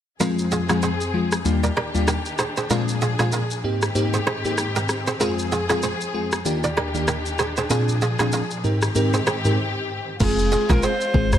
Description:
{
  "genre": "afrobeats",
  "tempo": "96 BPM",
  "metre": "4/4",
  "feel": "swing 58% on 16ths",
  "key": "F dorian",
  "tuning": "A4 = 443 Hz",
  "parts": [
    { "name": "crystalline FM electric piano", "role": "accompaniment", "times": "0.2-11.4 s", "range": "Eb2 to Bb4", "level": "-22 LUFS", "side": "left 1 dB", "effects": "chorus, phaser" },
    { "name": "dark studio string section", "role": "sustained chords", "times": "0.2-11.4 s", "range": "Eb2 to Ab4", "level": "-27 LUFS", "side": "left 1 dB", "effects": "sidechain pumping" },
    { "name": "kora", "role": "riff", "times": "0.2-11.0 s", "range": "F4 to D5", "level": "-27 LUFS", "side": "right 4 dB", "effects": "ping-pong delay" },
    { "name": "afro-pop drum kit", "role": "drums", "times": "0.2-11.4 s", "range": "crash cymbal, kick drum, rim click, shaker, toms", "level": "-26 LUFS", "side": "equal", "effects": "none" },
    { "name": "breathy alto saxophone", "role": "melody", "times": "10.2-11.4 s", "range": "Ab4 to C5", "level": "-23 LUFS", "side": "equal", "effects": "none" },
    { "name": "woody log drum bass", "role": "bass", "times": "10.2-11.4 s", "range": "F1 to Bb1", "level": "-21 LUFS", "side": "equal", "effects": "none" }
  ],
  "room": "light reverb, digital ambience",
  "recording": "lossy compression artefacts",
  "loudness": "-20 LUFS",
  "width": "side -10 dB against mid",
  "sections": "0.2-10.2 A section; 10.2-11.4 B section",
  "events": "break 9.6-10.2",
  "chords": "0.2 Fm; 1.5 Ebmaj7; 2.7 Bb7; 3.6 Abmaj7; 5.2 Fm; 6.5 Ebmaj7; 7.7 Bb7; 8.6 Abmaj7; 10.2 Fm"
}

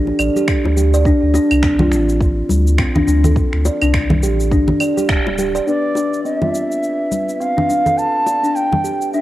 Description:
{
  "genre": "organic downtempo",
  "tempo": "104 BPM",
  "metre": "4/4",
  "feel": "swing 58% on 16ths",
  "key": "D dorian",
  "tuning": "A4 = 440 Hz",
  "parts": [
    { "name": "kalimba", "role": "arpeggios", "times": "0.0-9.2 s", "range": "C4 to D5", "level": "-18 LUFS", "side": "equal", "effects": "low-pass filter, tape echo" },
    { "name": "warm sub bass", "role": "bass", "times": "0.0-5.6 s", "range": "D1 to D2", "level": "-16 LUFS", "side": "equal", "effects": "transformer saturation, sidechain pumping" },
    { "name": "bronze singing bowl", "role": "texture", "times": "0.0-9.2 s", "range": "E3 to B4", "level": "-34 LUFS", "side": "right 1 dB", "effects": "stereo widening" },
    { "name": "bongos and congas", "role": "percussion", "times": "0.1-8.8 s", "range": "none", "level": "-21 LUFS", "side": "left 1 dB", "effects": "none" },
    { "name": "electronic claves, cabasa and finger snaps", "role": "drums", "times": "0.2-9.2 s", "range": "none", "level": "-24 LUFS", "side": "equal", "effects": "none" },
    { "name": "electronic kick drum", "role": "drums", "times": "0.5-5.2 s", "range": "none", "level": "-18 LUFS", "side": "equal", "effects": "none" },
    { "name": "bansuri", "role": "melody", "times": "5.7-9.2 s", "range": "D5 to A5", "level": "-18 LUFS", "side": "right 1 dB", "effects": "tape echo" }
  ],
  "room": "wet spring reverb, RT60 1.8 s, small room reverb",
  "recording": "home recording on cassette",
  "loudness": "-14 LUFS",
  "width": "side -14 dB against mid",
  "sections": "0.0-5.7 A section; 5.7-9.2 B section",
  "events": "band accent 5.1; filter sweep on kalimba 5.7-9.2",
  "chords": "0.0 Dsus2; 5.7 N.C."
}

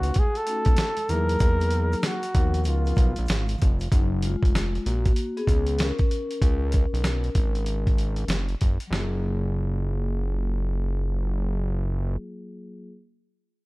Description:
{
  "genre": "hip hop, jazz-hop",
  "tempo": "96 BPM",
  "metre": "4/4",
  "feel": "swing 64% on 16ths",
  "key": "F# major",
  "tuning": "A4 = 440 Hz",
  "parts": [
    { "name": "mellow flugelhorn", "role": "melody", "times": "0.0-3.6 s", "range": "E#4 to A#4", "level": "-28 LUFS", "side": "right 1 dB", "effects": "analog delay" },
    { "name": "vibraphone with soft mallets", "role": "accompaniment", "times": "0.0-12.9 s", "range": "E#3 to B4", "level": "-32 LUFS", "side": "left 3 dB", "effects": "none" },
    { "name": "fat analog bass", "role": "bass", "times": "0.0-12.2 s", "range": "E#1 to E2", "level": "-25 LUFS", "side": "equal", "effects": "none" },
    { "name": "dusty soul sampler-style drum kit", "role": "drums", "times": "0.0-9.1 s", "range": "hi-hat, kick drum, snare drum", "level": "-23 LUFS", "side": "equal", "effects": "none" },
    { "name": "maracas and congas", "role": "percussion", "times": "0.0-3.9 s", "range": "none", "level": "-42 LUFS", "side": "right 2 dB", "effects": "none" }
  ],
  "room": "small room ambience",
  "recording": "none",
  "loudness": "-22 LUFS",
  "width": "side -22 dB against mid",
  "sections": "0.0-3.9 A section; 3.9-8.9 B section; 8.9-11.4 C section",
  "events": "vibraphone solo 3.9-8.9",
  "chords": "0.0 B9; 1.1 Emaj9#11; 2.7 C#13; 3.9 F#maj9; 6.4 C#5; 8.3 N.C.; 8.9 F#maj9"
}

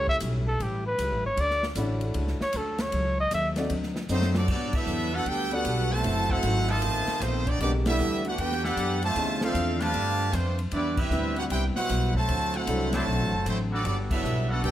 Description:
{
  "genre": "jazz, big band swing",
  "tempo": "154 BPM",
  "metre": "4/4",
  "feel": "swing 65% on 8ths",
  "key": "G major from 4.5 s",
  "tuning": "A4 = 437 Hz",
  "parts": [
    { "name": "mellow trumpet", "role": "melody", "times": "0.0-3.5 s", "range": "G4 to E5", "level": "-27 LUFS", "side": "equal", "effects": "plate reverb" },
    { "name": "picked steel-string acoustic guitar", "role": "accompaniment", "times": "0.0-14.7 s", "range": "G2 to A4", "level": "-36 LUFS", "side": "left 3 dB", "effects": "none" },
    { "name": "warm upright piano", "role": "accompaniment", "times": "0.0-13.3 s", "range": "E3 to F#5", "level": "-33 LUFS", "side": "left 2 dB", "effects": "none" },
    { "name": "upright bass", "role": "bass", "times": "0.0-14.7 s", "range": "F#1 to G2", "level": "-29 LUFS", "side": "equal", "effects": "none" },
    { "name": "swinging big-band drum kit", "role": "drums", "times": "0.1-14.7 s", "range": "crash cymbal, hi-hat, kick drum, ride cymbal, snare drum", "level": "-35 LUFS", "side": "equal", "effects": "none" },
    { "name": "brilliant trumpet section", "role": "melody", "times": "4.1-14.7 s", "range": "A3 to A5", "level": "-29 LUFS", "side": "right 1 dB", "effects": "none" },
    { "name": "warm trombone section", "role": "second line", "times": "4.1-14.7 s", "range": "B2 to G4", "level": "-32 LUFS", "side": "right 3 dB", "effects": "none" },
    { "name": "muted trombone section", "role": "sustained chords", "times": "5.1-14.7 s", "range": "F3 to C5", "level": "-36 LUFS", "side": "left 1 dB", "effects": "none" }
  ],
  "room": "moderate large studio reverb, RT60 0.9 s",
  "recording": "none",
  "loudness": "-24 LUFS",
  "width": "side -12 dB against mid",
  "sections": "0.0-4.5 A section; 4.5-14.7 B section",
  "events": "trumpet solo 0.0-4.5; drum fill 4.1-4.5; band accent 4.7, 7.8, 10.9, 14.1",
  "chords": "0.0 A7; 1.4 Dmaj7; 2.9 F#m7; 3.7 D7b9; 4.5 Gmaj9; 6.0 F#m7b5; 6.8 F7#11; 7.6 Em11; 9.2 Dm9; 9.9 G7; 10.7 Cmaj7; 12.3 D9; 13.9 Gmaj9"
}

